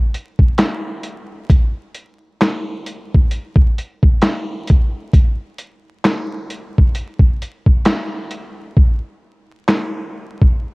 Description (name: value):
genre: hip hop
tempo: 66 BPM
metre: 4/4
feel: swing 58% on 16ths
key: none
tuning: none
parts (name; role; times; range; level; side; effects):
- boom bap sampler-style drum kit; drums; 0.1-10.6 s; handclaps, hi-hat, kick drum, snare drum; -14 LUFS; equal; none
room: light reverb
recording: worn, warbling old tape, cassette tape, vinyl crackle, warbly pitch drift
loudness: -14 LUFS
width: side -29 dB against mid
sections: 0.0-10.7 A section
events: hi-hats muted 8.8-10.7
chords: none